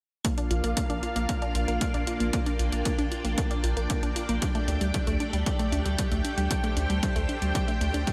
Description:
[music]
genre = italo disco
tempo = 115 BPM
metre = 4/4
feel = straight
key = Bb major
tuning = A4 = 440 Hz
[part]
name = string machine, full ensemble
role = sustained chords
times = 0.2-8.1 s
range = A3 to G5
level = -34 LUFS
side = equal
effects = ensemble chorus
[part]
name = unison pluck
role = arpeggios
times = 0.2-8.1 s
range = G3 to F4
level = -34 LUFS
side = equal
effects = digital delay
[part]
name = electronic hi-hat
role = drums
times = 0.2-8.1 s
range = none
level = -38 LUFS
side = equal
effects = none
[part]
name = electronic kick drum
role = drums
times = 0.2-8.1 s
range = none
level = -32 LUFS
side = equal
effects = none
[part]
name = round analog bass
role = bass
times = 0.5-8.0 s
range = Bb1 to D2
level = -31 LUFS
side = equal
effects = none
[sound]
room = moderate plate reverb, RT60 2.1 s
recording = bright 1980s-style digital production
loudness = -27 LUFS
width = mono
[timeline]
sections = 0.2-8.1 A section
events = none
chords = 0.2 Bb; 4.4 Dsus4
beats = | 0.25 0.77 1.29 1.81 | 2.33 2.85 3.38 3.90 | 4.42 4.94 5.46 5.99 | 6.51 7.03 7.55 8.07

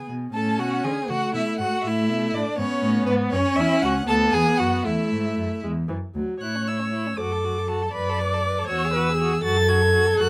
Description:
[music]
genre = quick classical-period movement for string quartet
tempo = 79 BPM (dotted quarters)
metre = 6/8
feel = straight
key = A major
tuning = A4 = 440 Hz
[part]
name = warm violin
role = melody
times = 0.0-10.3 s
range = B4 to A6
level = -30 LUFS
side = equal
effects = none
[part]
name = rich violin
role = second line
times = 0.0-10.3 s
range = B3 to B4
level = -30 LUFS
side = equal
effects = none
[part]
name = warm viola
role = accompaniment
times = 0.0-10.3 s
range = E3 to D5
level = -28 LUFS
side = equal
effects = none
[part]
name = warm cello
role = bass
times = 0.1-10.3 s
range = C#2 to D3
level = -28 LUFS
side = equal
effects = none
[sound]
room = light reverb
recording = close, detailed microphones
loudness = -23 LUFS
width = mono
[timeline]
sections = 0.0-6.4 A section; 6.4-10.3 B section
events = none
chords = 0.3 A; 1.8 Asus24; 2.6 G#madd11; 3.3 F#5; 4.1 Bm/D; 4.9 Esus4; 5.6 N.C.; 6.4 A; 7.2 D/F#; 7.9 Bm7/F#; 8.7 Eadd9; 9.4 F#m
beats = | 0.34 1.09 | 1.84 2.59 | 3.32 4.08 | 4.85 5.64 | 6.43 7.19 | 7.94 8.69 | 9.44 10.19

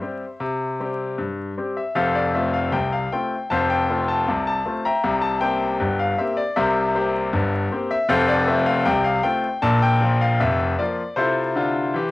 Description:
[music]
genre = ragtime piano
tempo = 78 BPM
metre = 2/4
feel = straight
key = F major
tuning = A4 = 440 Hz
[part]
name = bright concert grand piano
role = solo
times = 0.0-12.1 s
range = F1 to Bb5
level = -19 LUFS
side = left 2 dB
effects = cassette tape
[sound]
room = moderate small room reverb, RT60 0.6 s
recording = home recording on cassette, vinyl crackle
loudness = -19 LUFS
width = side -19 dB against mid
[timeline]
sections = 0.0-2.0 A section; 2.0-12.1 B section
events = none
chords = 0.0 C; 2.0 F; 5.0 C7; 8.1 F; 9.6 Bb5; 11.2 F/C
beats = | 0.41 1.19 | 1.96 2.73 | 3.50 4.27 | 5.04 5.80 | 6.57 7.33 | 8.10 8.86 | 9.63 10.40 | 11.17 11.94

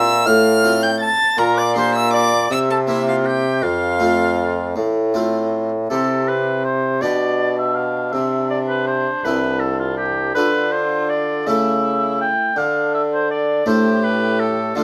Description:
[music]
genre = classical, baroque-style sonata movement with continuo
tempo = 54 BPM (dotted quarters)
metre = 6/8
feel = straight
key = F major, C major from 5.9 s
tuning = A4 = 443 Hz
[part]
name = warm violin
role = melody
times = 0.0-14.8 s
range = D4 to A6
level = -27 LUFS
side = equal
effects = none
[part]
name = warm oboe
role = second line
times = 0.0-14.8 s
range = E4 to A5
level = -23 LUFS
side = equal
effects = none
[part]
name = harpsichord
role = accompaniment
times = 0.0-14.8 s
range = C2 to A4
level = -25 LUFS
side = equal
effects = none
[part]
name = clear bassoon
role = bass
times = 0.0-14.8 s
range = C2 to D3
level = -22 LUFS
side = equal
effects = none
[sound]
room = light reverb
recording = close, detailed microphones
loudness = -18 LUFS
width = mono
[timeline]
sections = 0.0-5.9 A section; 5.9-14.8 A section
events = none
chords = 0.3 F/A; 1.4 Gm/Bb; 2.5 C7; 3.6 F; 5.9 C; 7.0 G/B; 8.1 C; 10.4 Dm; 11.5 A/C#; 12.6 D5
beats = 0.27 | 1.38 2.50 | 3.62 4.76 | 5.90 7.02 | 8.13 9.24 | 10.35 11.46 | 12.56 13.66 | 14.75

